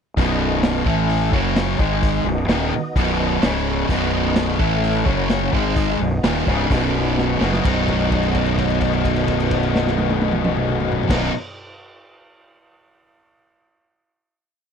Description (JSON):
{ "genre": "classic rock", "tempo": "128 BPM", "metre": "4/4", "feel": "straight", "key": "B mixolydian", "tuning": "A4 = 437 Hz", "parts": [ { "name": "tonewheel organ", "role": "sustained chords", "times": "0.2-11.3 s", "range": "B3 to E5", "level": "-29 LUFS", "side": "equal", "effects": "slow rotary speaker, chorus vibrato" }, { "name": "sludgy distorted guitar", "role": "riff", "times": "0.2-11.3 s", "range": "B1 to A3", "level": "-22 LUFS", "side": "right 11 dB", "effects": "overdrive" }, { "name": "tight distorted guitar", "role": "riff", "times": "0.2-11.3 s", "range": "B1 to D#4", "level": "-22 LUFS", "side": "left 16 dB", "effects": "distortion" }, { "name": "fuzz fingered electric bass", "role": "bass", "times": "0.2-11.3 s", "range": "B0 to A1", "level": "-23 LUFS", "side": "equal", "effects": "overdrive" }, { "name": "vintage drum kit", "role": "drums", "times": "0.2-11.2 s", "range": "crash cymbal, hi-hat, kick drum, snare drum, toms", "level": "-22 LUFS", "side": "equal", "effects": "none" } ], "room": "little or no reverb", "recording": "dry, close 1970s-style studio recording", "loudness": "-17 LUFS", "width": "side -7 dB against mid", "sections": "0.2-7.6 riff; 7.6-11.4 final chord", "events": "drum fill 7.2-7.6; held note 7.6-11.1", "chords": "0.2 B; 0.9 A5; 1.3 F#5; 1.8 G#5; 2.3 B; 3.4 C#5; 3.9 B; 4.6 A5; 5.1 F#5; 5.5 G#5; 6.0 B" }